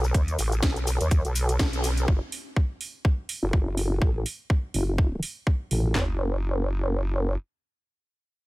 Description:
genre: bass house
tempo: 124 BPM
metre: 4/4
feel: swing 56% on 16ths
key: F# dorian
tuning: A4 = 440 Hz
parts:
  - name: vowel-sweep wobble bass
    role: bass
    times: 0.0-7.4 s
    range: F#1 to D#2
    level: -25 LUFS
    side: equal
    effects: chorus, tube saturation, sidechain pumping
  - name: house drum kit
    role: drums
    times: 0.0-5.8 s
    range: hi-hat, shaker, snare drum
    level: -32 LUFS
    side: equal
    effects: studio reverb
  - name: garage drum kit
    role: drums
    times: 0.1-6.1 s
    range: handclaps, kick drum, snare drum, toms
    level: -22 LUFS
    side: equal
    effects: overdrive, studio reverb
room: digital ambience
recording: none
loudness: -23 LUFS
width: side -20 dB against mid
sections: 0.0-2.1 A section; 2.1-6.0 B section; 6.0-8.5 C section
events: drop 0.0-2.1; band accent 1.6; filter sweep on wobble bass 2.1-6.0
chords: none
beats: | 0.14 0.63 1.11 1.60 | 2.08 2.56 3.05 3.53 | 4.02 4.50 4.98 5.47 | 5.95 6.43 6.92

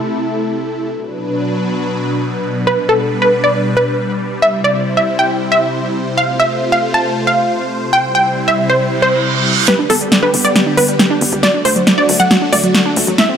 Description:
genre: uplifting trance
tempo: 137 BPM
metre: 4/4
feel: straight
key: G major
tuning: A4 = 439 Hz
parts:
  - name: supersaw pad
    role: sustained chords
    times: 0.0-13.4 s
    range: B2 to C5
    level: -18 LUFS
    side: equal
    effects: phaser, low-pass filter
  - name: wide unison pluck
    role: melody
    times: 2.7-13.4 s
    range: A4 to A5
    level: -14 LUFS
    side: equal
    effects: tape echo
  - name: reverse cymbal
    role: sound effects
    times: 9.0-9.7 s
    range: none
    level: -17 LUFS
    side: right 7 dB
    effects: none
  - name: wide unison pluck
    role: arpeggios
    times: 9.7-13.4 s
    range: F#3 to D5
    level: -18 LUFS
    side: right 3 dB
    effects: vintage 12-bit sampler grit, tape echo
  - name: big-room dance drum kit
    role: drums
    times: 9.7-13.3 s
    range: hi-hat, snare drum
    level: -13 LUFS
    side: equal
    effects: overdrive, studio ambience
  - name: tight sequencer bass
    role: bass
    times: 9.9-13.2 s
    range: G1 to D2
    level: -24 LUFS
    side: left 1 dB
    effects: high-pass filter
room: moderate lush hall reverb, RT60 1.8 s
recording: none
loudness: -12 LUFS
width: side -8 dB against mid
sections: 0.0-9.7 A section; 9.7-13.4 B section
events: reverse cymbal 9.0-9.7; build-up 9.7-13.4; drum fill 9.7-13.4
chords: 0.0 Am; 0.9 Bm; 2.7 G; 4.4 C; 6.2 F; 7.9 C; 9.7 G; 11.4 D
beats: 0.04 0.48 | 0.92 1.36 1.80 2.23 | 2.67 3.11 3.55 3.99 | 4.42 4.86 5.30 5.74 | 6.18 6.61 7.05 7.49 | 7.93 8.37 8.80 9.24 | 9.68 10.12 10.56 10.99 | 11.43 11.87 12.31 12.74 | 13.18

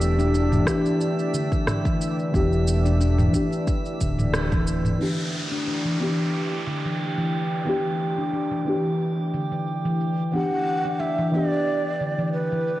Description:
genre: organic downtempo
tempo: 90 BPM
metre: 4/4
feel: swing 54% on 16ths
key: E minor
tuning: A4 = 440 Hz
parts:
  - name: deep mellow chord stab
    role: accompaniment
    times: 0.0-12.8 s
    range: E3 to G4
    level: -28 LUFS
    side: left 1 dB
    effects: chorus, sidechain pumping, digital delay
  - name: warm analog pad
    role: sustained chords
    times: 0.0-12.8 s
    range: E3 to D5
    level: -33 LUFS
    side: right 1 dB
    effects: chorus, sidechain pumping
  - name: smooth gliding synth bass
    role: bass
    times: 0.0-4.9 s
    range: D1 to E1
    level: -22 LUFS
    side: equal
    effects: sidechain pumping
  - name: organic electronic drum kit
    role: drums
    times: 0.0-12.8 s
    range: cabasa, rim click, toms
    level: -28 LUFS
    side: right 1 dB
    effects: low-pass filter on perc, studio ambience, low-pass filter on toms, low-pass filter on snare
  - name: drifting glass-harmonics texture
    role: texture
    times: 0.0-12.8 s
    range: G4 to E5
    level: -34 LUFS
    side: right 4 dB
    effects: chorus, built-in reverb
  - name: handpan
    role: arpeggios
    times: 0.2-12.8 s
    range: D3 to D4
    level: -26 LUFS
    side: left 2 dB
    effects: low-pass filter, digital delay
  - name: electronic kick drum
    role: drums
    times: 0.7-4.6 s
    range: none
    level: -25 LUFS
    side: equal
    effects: studio ambience
  - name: downlifter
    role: sound effects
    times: 5.0-10.3 s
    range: none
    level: -34 LUFS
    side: right 1 dB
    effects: none
  - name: breathy mellow ney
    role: melody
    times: 10.3-12.8 s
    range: B4 to F#5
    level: -25 LUFS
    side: right 2 dB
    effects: digital delay
room: wet concert hall reverb, RT60 2.3 s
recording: worn, warbling old tape, cassette tape, warbly pitch drift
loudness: -21 LUFS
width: side -15 dB against mid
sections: 0.0-5.0 A section; 5.0-12.8 B section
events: band accent 4.3-4.7; filter sweep on handpan 5.0-12.8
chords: 0.0 Em7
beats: 0.34 1.01 1.67 | 2.34 3.01 3.67 4.34 | 5.01 5.67 6.34 7.01 | 7.67 8.34 9.01 9.67 | 10.34 11.01 11.67 12.34

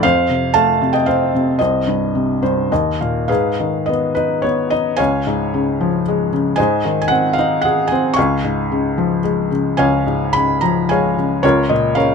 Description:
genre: classical, lyrical solo piano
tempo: 102-118 BPM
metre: 3/4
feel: rubato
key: G# dorian from 3.3 s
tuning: A4 = 440 Hz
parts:
  - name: felt-muted upright piano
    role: solo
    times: 0.0-12.1 s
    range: C2 to C#6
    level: -14 LUFS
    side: left 1 dB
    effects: none
room: light reverb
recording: close, detailed microphones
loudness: -14 LUFS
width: side -5 dB against mid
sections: 0.0-3.3 A section; 3.3-12.1 B section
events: felt piano fill 2.1-3.3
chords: 0.0 F; 1.6 Cm; 2.7 Eb5; 3.3 G#m; 5.0 C#; 6.6 G#; 8.2 C#; 11.4 A#m/C#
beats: | 0.03 0.55 1.07 | 1.59 2.13 2.71 | 3.30 3.88 4.44 | 4.99 5.54 6.07 | 6.58 7.11 7.64 | 8.17 8.70 9.24 | 9.79 10.35 10.90 | 11.44 11.96

